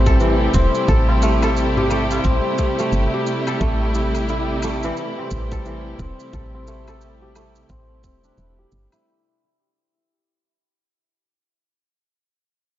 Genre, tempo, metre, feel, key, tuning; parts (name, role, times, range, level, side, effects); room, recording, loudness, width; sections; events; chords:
organic downtempo; 88 BPM; 4/4; swing 60% on 16ths; A minor; A4 = 440 Hz
dark chamber string section; sustained chords; 0.0-9.0 s; C3 to G4; -23 LUFS; right 1 dB; sidechain pumping
kora; arpeggios; 0.0-10.5 s; E3 to A4; -24 LUFS; left 1 dB; low-pass filter, diffuse ambient delay
woody FM bass; bass; 0.0-8.9 s; E1 to A1; -20 LUFS; equal
electronic kick drum; drums; 0.1-8.2 s; -22 LUFS; equal
shaker and woodblock; drums; 0.1-9.0 s; -36 LUFS; right 1 dB
tabla; percussion; 0.5-2.2 s; -30 LUFS; left 2 dB
moderate plate reverb, RT60 2.8 s; dreamy mix soaked in reverb, nothing above 7.5 kHz; -17 LUFS; side -13 dB against mid
0.0-9.1 A section
fade-out 0.0-9.1; filter sweep on kora 0.0-9.1
0.0 Am7